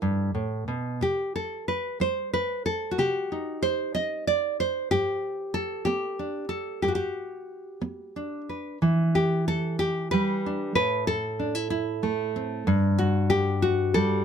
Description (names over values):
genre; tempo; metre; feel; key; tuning
folk, solo fingerstyle acoustic guitar; 62 BPM (dotted quarters); 6/8; rubato; G major; A4 = 440 Hz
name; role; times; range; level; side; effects
nylon-string guitar; solo; 0.0-14.2 s; G2 to Eb5; -24 LUFS; equal; none
room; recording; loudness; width
little or no reverb; close, detailed microphones; -24 LUFS; side -7 dB against mid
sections
0.0-8.8 A section; 8.8-14.2 B section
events
none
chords
0.0 Am7; 1.0 Cm; 4.9 Gmaj7; 8.8 Em7; 10.8 Am; 12.7 Gsus2